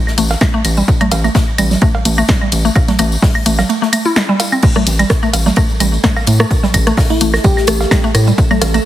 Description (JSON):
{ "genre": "minimal techno", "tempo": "128 BPM", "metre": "4/4", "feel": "swing 55% on 16ths", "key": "unclear", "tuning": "A4 = 440 Hz", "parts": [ { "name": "natural country drum kit", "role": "drums", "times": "0.1-8.7 s", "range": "hi-hat, ride cymbal, snare drum", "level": "-28 LUFS", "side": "right 1 dB", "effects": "high-pass filter on cymbals, studio reverb, high-pass filter on hats, high-pass filter on snare, high-pass filter on room" }, { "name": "electronic claves, cowbell, congas and rim click", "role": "percussion", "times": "0.1-8.8 s", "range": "none", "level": "-19 LUFS", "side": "right 3 dB", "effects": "studio reverb, tape echo" }, { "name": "mallet-like synth pluck", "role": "riff", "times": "0.2-8.8 s", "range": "G3 to E4", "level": "-17 LUFS", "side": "equal", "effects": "chorus, sidechain pumping, tape echo" }, { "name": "round analog bass", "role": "bass", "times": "0.2-8.8 s", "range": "A1 to A2", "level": "-15 LUFS", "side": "equal", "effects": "sidechain pumping" }, { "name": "house drum kit", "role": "drums", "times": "0.2-8.8 s", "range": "crash cymbal, hi-hat, snare drum", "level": "-18 LUFS", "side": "left 1 dB", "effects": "studio reverb" }, { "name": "tambourine", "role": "percussion", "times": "0.2-8.8 s", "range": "none", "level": "-25 LUFS", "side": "left 3 dB", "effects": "none" }, { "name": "electronic kick drum", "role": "drums", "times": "0.4-8.5 s", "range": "none", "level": "-14 LUFS", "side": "equal", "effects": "studio reverb" }, { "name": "swarming drone", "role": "texture", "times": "5.7-8.9 s", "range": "A3 to A4", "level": "-25 LUFS", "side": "right 6 dB", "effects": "built-in reverb, sidechain pumping" }, { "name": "bell-like FM electric piano", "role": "melody", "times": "7.1-8.1 s", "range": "E4 to G4", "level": "-20 LUFS", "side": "left 3 dB", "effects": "chorus, tape echo" } ], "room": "light reverb, small room reverb", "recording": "heavily compressed radio sound", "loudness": "-10 LUFS", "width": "side -13 dB against mid", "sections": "0.0-4.6 A section; 4.6-8.9 B section", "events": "drop 4.6-8.9", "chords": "none" }